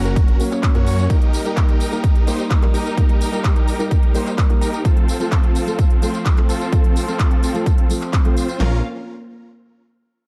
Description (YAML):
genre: EDM, festival progressive house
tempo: 128 BPM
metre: 4/4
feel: straight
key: Bb harmonic minor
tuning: A4 = 440 Hz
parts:
  - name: felt-muted upright piano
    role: accompaniment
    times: 0.0-8.8 s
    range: F3 to Db5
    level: -28 LUFS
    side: equal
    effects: sidechain pumping, digital delay
  - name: clear symphonic string section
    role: sustained chords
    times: 0.0-8.8 s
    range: Bb2 to F5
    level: -32 LUFS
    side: equal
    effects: sidechain pumping
  - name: big supersaw lead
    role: riff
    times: 0.0-8.8 s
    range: C4 to Db5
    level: -28 LUFS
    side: equal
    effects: sidechain pumping, low-pass filter, digital delay
  - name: detuned saw bass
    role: bass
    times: 0.0-1.1, 8.6-8.8 s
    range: Gb1 to Gb2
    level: -21 LUFS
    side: equal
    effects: sidechain pumping
  - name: big-room dance drum kit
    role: drums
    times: 0.0-8.6 s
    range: handclaps, hi-hat, tambourine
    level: -32 LUFS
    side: equal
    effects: overdrive
  - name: big-room dance drum kit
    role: drums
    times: 0.2-8.7 s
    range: handclaps, kick drum, snare drum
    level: -18 LUFS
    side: equal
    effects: overdrive
room: digital ambience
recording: dark, warm production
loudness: -18 LUFS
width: mono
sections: 0.0-8.6 A section; 8.6-10.3 B section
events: filter sweep on supersaw synth 0.0-8.6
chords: 0.0 Gb; 1.1 Eb; 4.8 F; 8.6 Bbm